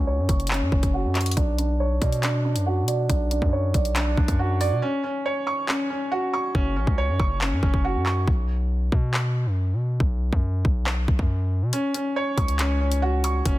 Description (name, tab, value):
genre	hip hop, drill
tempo	139 BPM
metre	4/4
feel	half-time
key	unclear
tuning	A4 = 441 Hz
part	felt-muted upright piano	accompaniment	0.0-8.3, 11.7-13.6 s	C#4 to C#6	-26 LUFS	right 2 dB	low-pass filter
part	hard-hitting 808-style bass	bass	0.0-13.6 s	F#1 to B2	-24 LUFS	equal	none
part	drill drum kit	drums	0.3-13.6 s	handclaps, hi-hat, kick drum, rim click	-24 LUFS	equal	none
room	little or no reverb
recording	dense, heavily limited modern master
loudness	-21 LUFS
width	side -16 dB against mid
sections	0.0-13.6 A section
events	filter sweep on felt piano 0.0-4.8; hi-hats muted 4.8-11.7; break 4.8-5.7; kick muted 11.7-12.2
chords	0.0 F#5; 1.4 Bmadd9; 4.8 F#5; 8.3 B5; 11.7 F#5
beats	0.07 0.51 0.94 | 1.37 1.80 2.23 2.66 | 3.10 3.53 3.96 4.39 | 4.82 5.25 5.68 6.12 | 6.55 6.98 7.41 7.84 | 8.28 8.71 9.14 9.57 | 10.00 10.43 10.87 11.30 | 11.73 12.16 12.59 13.02 | 13.46